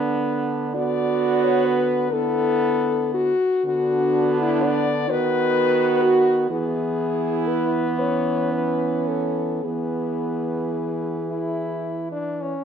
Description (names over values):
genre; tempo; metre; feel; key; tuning
classical, lyrical piece for horn quartet; 35-45 BPM (dotted quarters); 6/8; rubato; unclear; A4 = 440 Hz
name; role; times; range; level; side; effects
dark French horn; second line; 0.0-12.1 s; B3 to F#4; -26 LUFS; right 9 dB; none
warm French horn; accompaniment; 0.0-12.6 s; B3 to E4; -26 LUFS; equal; none
warm French horn; bass; 0.0-12.6 s; D3 to E3; -28 LUFS; right 3 dB; none
dark French horn; melody; 0.8-12.6 s; E4 to D5; -23 LUFS; left 5 dB; none
room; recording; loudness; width
moderate recital hall reverb, RT60 1.6 s; dark, warm production, nothing above 7.5 kHz; -19 LUFS; side -8 dB against mid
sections
0.0-12.6 A section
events
none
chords
0.0 Bm/D; 5.1 B/D#; 6.5 E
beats
| 0.76 2.12 | 3.65 5.09 | 6.50 7.99 | 9.63 11.30